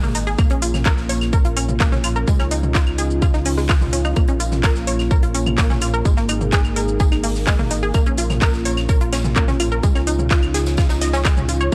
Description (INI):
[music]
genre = melodic techno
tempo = 127 BPM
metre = 4/4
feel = straight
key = Bb minor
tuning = A4 = 436 Hz
[part]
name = dark analog pad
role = sustained chords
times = 0.0-11.7 s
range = Bb3 to Ab4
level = -28 LUFS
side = equal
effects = chorus, sidechain pumping
[part]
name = unison pluck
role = arpeggios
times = 0.0-11.7 s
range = Ab3 to Eb5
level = -27 LUFS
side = equal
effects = sidechain pumping, tape echo
[part]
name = round analog bass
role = bass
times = 0.0-11.7 s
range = Ab1 to Db2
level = -25 LUFS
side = equal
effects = sidechain pumping
[part]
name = house drum kit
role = drums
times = 0.0-11.7 s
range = claves, handclaps, hi-hat, shaker, toms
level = -27 LUFS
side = equal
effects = none
[part]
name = gated 80s drum kit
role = drums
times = 0.1-11.7 s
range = hi-hat, snare drum, tambourine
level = -37 LUFS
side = equal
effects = sidechain pumping on hats, high-pass filter on hats, high-pass filter on snare, sidechain pumping on perc, high-pass filter on perc, high-pass filter on room
[part]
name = electronic kick drum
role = drums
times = 0.4-11.7 s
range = none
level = -19 LUFS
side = equal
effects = none
[sound]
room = little or no reverb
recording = cassette tape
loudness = -18 LUFS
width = mono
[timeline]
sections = 0.0-11.7 A section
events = none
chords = 0.4 Bbm; 2.3 Dbadd9; 4.2 Bbm; 6.1 Absus2; 7.9 Bbm; 9.8 Dbadd9